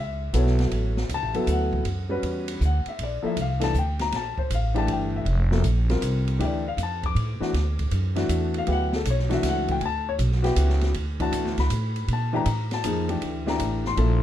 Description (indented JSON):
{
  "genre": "modal jazz",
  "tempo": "158 BPM",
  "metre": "3/4",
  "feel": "swing 66% on 8ths",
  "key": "D major",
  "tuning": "A4 = 440 Hz",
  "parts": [
    { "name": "warm concert grand piano", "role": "accompaniment", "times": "0.0-14.2 s", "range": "E3 to D6", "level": "-27 LUFS", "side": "left 3 dB", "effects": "none" },
    { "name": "upright bass", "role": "bass", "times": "0.0-14.2 s", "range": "F1 to Bb2", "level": "-24 LUFS", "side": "right 1 dB", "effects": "none" },
    { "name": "open jazz drum kit", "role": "drums", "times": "0.3-14.1 s", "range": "hi-hat, kick drum, ride cymbal, snare drum", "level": "-33 LUFS", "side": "right 1 dB", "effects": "none" }
  ],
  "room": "light reverb",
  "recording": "dark, warm production",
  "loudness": "-22 LUFS",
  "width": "side -12 dB against mid",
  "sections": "0.0-14.2 A section",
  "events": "none",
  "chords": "0.0 Dmaj9; 3.0 Bbmaj9; 7.5 Dmaj9; 12.1 Bbmaj9",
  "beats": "0.34 | 0.72 1.10 1.48 | 1.86 2.23 2.61 | 2.99 3.37 3.75 | 4.13 4.51 4.88 | 5.26 5.64 6.02 | 6.40 6.78 7.16 | 7.54 7.92 8.29 | 8.67 9.05 9.43 | 9.81 10.19 10.57 | 10.95 11.33 11.71 | 12.09 12.46 12.84 | 13.22 13.60 13.98"
}